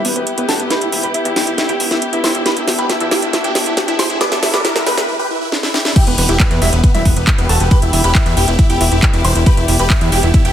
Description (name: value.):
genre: uplifting trance.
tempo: 137 BPM.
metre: 4/4.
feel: straight.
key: E minor.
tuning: A4 = 440 Hz.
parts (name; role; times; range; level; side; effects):
big supersaw lead; melody; 0.0-10.5 s; G3 to D5; -19 LUFS; right 1 dB; phaser, sidechain pumping, low-pass filter, ping-pong delay.
bright grand piano; second line; 0.0-10.5 s; B4 to D6; -24 LUFS; left 1 dB; sidechain pumping, low-pass filter, ping-pong delay.
warm chamber string section; sustained chords; 0.0-10.5 s; B3 to G4; -23 LUFS; left 1 dB; sidechain pumping.
plucky analog bass; bass; 0.0-10.5 s; E1 to E2; -18 LUFS; equal; sidechain pumping, high-pass filter.
house drum kit; drums; 0.0-10.5 s; crash cymbal, handclaps, hi-hat, snare drum; -18 LUFS; right 1 dB; none.
riser; sound effects; 0.6-5.1 s; none; -27 LUFS; equal; none.
electronic kick drum; drums; 6.0-10.4 s; none; -12 LUFS; equal; none.
room: light reverb, digital ambience.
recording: high-pass filter.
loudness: -12 LUFS.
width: side -10 dB against mid.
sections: 0.0-6.0 A section; 6.0-10.5 B section.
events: build-up 0.0-6.0; drum fill 0.0-5.1, 5.5-6.0; filter sweep on supersaw synth 0.0-6.0; riser 0.6-5.1; break 5.1-6.0; drop 6.0-10.5.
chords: 0.0 Em.